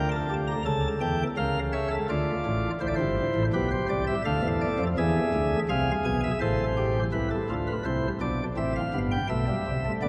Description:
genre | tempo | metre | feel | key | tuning
classical, baroque-style 3-part fugue for pipe organ | 83 BPM | 3/4 | straight | unclear | A4 = 440 Hz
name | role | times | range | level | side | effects
chamber organ, sparkling flutes | solo | 0.0-10.1 s | G1 to Bb5 | -27 LUFS | equal | none
room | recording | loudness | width
wet cathedral reverb, RT60 5.5 s | none | -27 LUFS | mono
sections
0.0-7.1 A section; 7.1-10.1 B section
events
none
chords
0.0 Gm/D; 0.6 A/C#; 2.1 Dm; 2.8 Am; 4.2 Dm; 5.0 E; 6.4 Am; 7.1 Am/C; 8.6 G13; 9.3 G/B

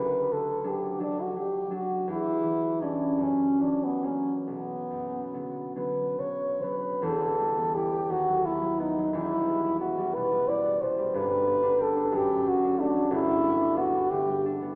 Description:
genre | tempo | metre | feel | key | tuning
classical, romantic duo for French horn and harp | 45-63 BPM (dotted quarters) | 6/8 | rubato | B minor, E minor from 7.0 s | A4 = 440 Hz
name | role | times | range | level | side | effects
warm French horn | melody | 0.0-14.4 s | B3 to D5 | -29 LUFS | equal | none
concert harp | accompaniment | 0.0-14.8 s | E1 to G4 | -33 LUFS | equal | none
room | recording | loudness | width
wet church reverb, RT60 2.9 s | recorded in a church or concert hall, AM radio sound | -28 LUFS | mono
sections
0.0-7.0 A section; 7.0-14.8 B section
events
none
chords
0.0 Dadd11; 2.1 C#dim/E; 3.2 F#7; 4.5 Bm; 7.0 Em; 8.1 B/D#; 9.1 Em; 11.1 G; 12.1 D/F#; 13.1 G

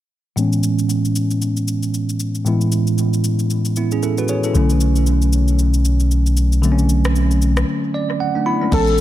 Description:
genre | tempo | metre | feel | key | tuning
amapiano | 115 BPM | 4/4 | swing 58% on 16ths | A major | A4 = 443 Hz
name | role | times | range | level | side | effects
bell-like tine electric piano | accompaniment | 0.4-9.0 s | A2 to B5 | -18 LUFS | right 1 dB | auto-pan, low-pass filter, dub echo
afro-pop drum kit | drums | 0.4-9.0 s | crash cymbal, kick drum, rim click, shaker | -28 LUFS | left 1 dB | dub echo
punchy sub bass | bass | 4.5-9.0 s | A1 to B1 | -15 LUFS | equal | none
warm velvety synth lead | melody | 8.7-9.0 s | A4 | -16 LUFS | equal | chorus
room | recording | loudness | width
moderate echo chamber reverb, RT60 1.8 s, digital ambience | echo-heavy mix | -15 LUFS | side -13 dB against mid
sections
0.4-8.7 A section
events
filter sweep on tine electric piano 0.4-8.7; break 7.7-8.7; tine electric piano fill 7.7-8.7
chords
0.4 Amaj7; 4.5 Bm9

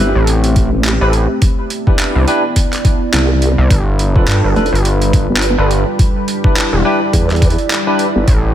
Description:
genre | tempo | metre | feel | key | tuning
glitch hop | 105 BPM | 4/4 | swing 58% on 16ths | unclear | A4 = 440 Hz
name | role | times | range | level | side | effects
dark analog pad | sustained chords | 0.0-8.5 s | G3 to D5 | -20 LUFS | right 1 dB | chorus, phaser, vintage 12-bit sampler grit, sidechain pumping
barky tine electric piano | stabs | 0.0-8.0 s | C4 to B4 | -19 LUFS | equal | lush chorus, sidechain pumping, analog delay
vowel-sweep wobble bass | bass | 0.0-8.3 s | F1 to E2 | -14 LUFS | equal | chorus
deep dark ambient pad | texture | 1.4-8.5 s | D4 to B5 | -30 LUFS | left 2 dB | none
gritty driven synth bass | bass | 0.2-8.5 s | E1 to G2 | -13 LUFS | equal | none
boom bap sampler-style drum kit | drums | 0.3-8.4 s | handclaps, hi-hat | -20 LUFS | right 1 dB | overdrive, studio reverb
electronic kick drum | drums | 0.6-8.4 s | none | -13 LUFS | equal | overdrive, studio reverb
room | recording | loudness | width
light reverb, digital ambience | none | -11 LUFS | side -11 dB against mid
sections
0.0-8.5 A section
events
none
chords
0.0 Am7; 1.4 Cmaj9; 3.7 G7; 6.0 Em7

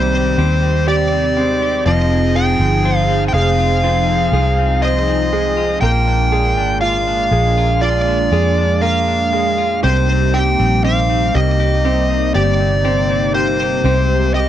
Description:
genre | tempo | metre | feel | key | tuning
pop | 60 BPM | 4/4 | straight | C minor | A4 = 435 Hz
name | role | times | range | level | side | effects
smooth overdriven lead guitar | melody | 0.0-14.5 s | C5 to G5 | -18 LUFS | equal | none
bright grand piano | accompaniment | 0.0-14.5 s | C3 to C5 | -22 LUFS | right 6 dB | none
lush unison pad | sustained chords | 0.0-14.5 s | C3 to Ab4 | -21 LUFS | left 1 dB | chorus, phaser
direct-recorded clean electric guitar | arpeggios | 0.0-14.5 s | F2 to G4 | -25 LUFS | left 13 dB | slapback echo
vintage muted fingered electric bass | bass | 0.0-14.5 s | F1 to F2 | -17 LUFS | equal | none
room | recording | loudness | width
little or no reverb | dry, close 1970s-style studio recording | -13 LUFS | side -11 dB against mid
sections
0.0-14.5 A section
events
none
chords
0.0 Abmaj7; 1.9 Fm7; 5.8 Bb7; 9.8 Cm7; 13.9 Abmaj7

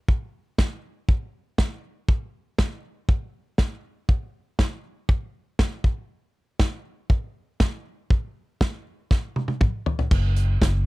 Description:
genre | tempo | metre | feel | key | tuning
piano-driven pop | 120 BPM | 4/4 | straight | unclear | A4 = 442 Hz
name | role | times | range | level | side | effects
loose indie drum kit | drums | 0.1-10.7 s | crash cymbal, hi-hat, kick drum, snare drum, toms | -20 LUFS | equal | none
vintage muted fingered electric bass | bass | 10.1-10.9 s | F#1 | -20 LUFS | equal | none
room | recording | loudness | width
little or no reverb | dry, close 1970s-style studio recording | -23 LUFS | side -20 dB against mid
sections
0.0-10.1 A section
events
drum fill 9.1-10.1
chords
none

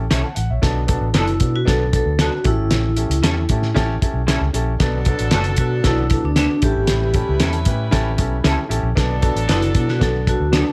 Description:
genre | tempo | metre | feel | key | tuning
uptempo 1960s-style soul | 115 BPM | 4/4 | straight | B minor | A4 = 440 Hz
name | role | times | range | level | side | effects
dark upright piano | accompaniment | 0.0-10.7 s | A2 to A5 | -28 LUFS | equal | none
vintage muted fingered electric bass | bass | 0.0-10.6 s | F#1 to B2 | -23 LUFS | equal | none
electric guitar through a small old amp | stabs | 0.1-10.6 s | F#3 to A4 | -28 LUFS | equal | ensemble chorus
cloth-damped thuddy drum kit | drums | 0.1-10.7 s | hi-hat, kick drum, snare drum | -22 LUFS | equal | none
vibraphone with medium hard mallets | melody | 1.2-10.7 s | D4 to A4 | -25 LUFS | equal | none
warm horn section | second line | 4.8-10.5 s | F#3 to B4 | -31 LUFS | equal | none
room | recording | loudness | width
little or no reverb | none | -18 LUFS | mono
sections
0.0-10.7 A section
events
none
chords
0.0 A7; 0.6 Bm7; 2.5 A7; 4.8 Bm7; 6.6 A7; 9.0 Bm7

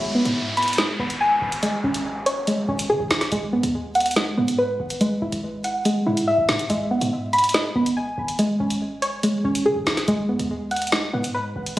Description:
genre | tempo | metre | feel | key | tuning
hip hop, drill | 142 BPM | 4/4 | half-time | G# minor | A4 = 440 Hz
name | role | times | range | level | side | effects
Celtic harp | accompaniment | 0.0-2.4 s | B3 to E4 | -38 LUFS | equal | none
soft round pluck | arpeggios | 0.0-11.8 s | G#3 to B5 | -21 LUFS | equal | chorus, ping-pong delay
short 808-style bass | bass | 0.0-11.8 s | G#1 to D#3 | -33 LUFS | equal | none
downlifter | sound effects | 0.0-3.3 s | none | -30 LUFS | equal | none
drill drum kit | drums | 0.3-11.8 s | hi-hat, snare drum | -24 LUFS | equal | none
room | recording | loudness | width
moderate digital room reverb, RT60 1.1 s, studio ambience | recorded on a phone in the room, studio reverb, vinyl crackle | -20 LUFS | side -15 dB against mid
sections
0.0-11.8 A section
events
none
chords
0.0 G#m; 1.6 C#5/G#; 3.3 G#m7; 5.0 Eadd9/G#; 6.7 G#m; 8.4 C#5/G#; 10.1 G#m7

